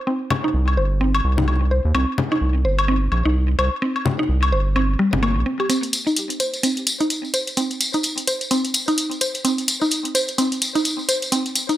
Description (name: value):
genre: minimal techno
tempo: 128 BPM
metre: 4/4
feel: swing 58% on 16ths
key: C minor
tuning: A4 = 439 Hz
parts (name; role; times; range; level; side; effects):
- mallet-like synth pluck; riff; 0.1-11.7 s; G3 to C5; -22 LUFS; equal; chorus, cassette tape, digital delay
- congas and woodblock; percussion; 0.3-5.7 s; none; -23 LUFS; left 3 dB; digital delay
- round analog bass; bass; 0.5-5.4 s; G1 to Eb2; -19 LUFS; equal; tube saturation
- electronic hi-hat; drums; 5.7-11.8 s; none; -23 LUFS; left 1 dB; none
- tambourine; percussion; 5.7-11.8 s; none; -24 LUFS; left 1 dB; none
room: moderate plate reverb, RT60 1.2 s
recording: none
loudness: -18 LUFS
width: side -14 dB against mid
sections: 0.0-5.7 A section; 5.7-11.8 B section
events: build-up 5.7-11.8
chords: 0.0 C5; 5.7 N.C.